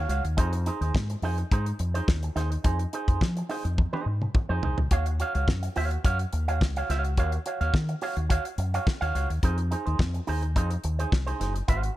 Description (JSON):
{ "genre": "disco", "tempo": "106 BPM", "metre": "4/4", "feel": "straight", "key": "unclear", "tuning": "A4 = 440 Hz", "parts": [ { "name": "electric guitar with an envelope filter", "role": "accompaniment", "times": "0.0-11.9 s", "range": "Eb4 to F5", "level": "-31 LUFS", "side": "right 4 dB", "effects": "none" }, { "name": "deep dub fingered electric bass", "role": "bass", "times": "0.0-11.9 s", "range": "Gb1 to F3", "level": "-27 LUFS", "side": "equal", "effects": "none" }, { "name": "damped 70s drum kit", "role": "drums", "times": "0.1-12.0 s", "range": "hi-hat, kick drum, snare drum, toms", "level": "-26 LUFS", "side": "equal", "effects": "none" } ], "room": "small room reverb", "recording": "none", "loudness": "-24 LUFS", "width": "side -15 dB against mid", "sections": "0.0-12.0 A section", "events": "drum fill 3.8-4.9", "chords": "0.4 Fm7; 4.9 Ebm9; 9.4 Fm7" }